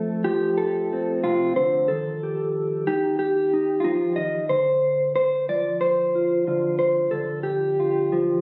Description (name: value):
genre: folk, solo fingerstyle acoustic guitar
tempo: 92 BPM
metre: 4/4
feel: straight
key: unclear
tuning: A4 = 439 Hz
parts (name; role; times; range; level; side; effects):
- mellow electric guitar; solo; 0.0-8.4 s; F2 to Eb5; -23 LUFS; equal; none
room: moderate small room ambience, RT60 0.5 s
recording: recorded on a phone in the room, studio reverb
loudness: -23 LUFS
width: mono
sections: 0.0-8.4 A section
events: none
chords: 0.0 F; 1.9 Ebadd9; 4.5 Dm7; 7.1 Dm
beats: 0.59 1.25 | 1.90 2.55 3.21 3.86 | 4.51 5.16 5.81 6.47 | 7.13 7.79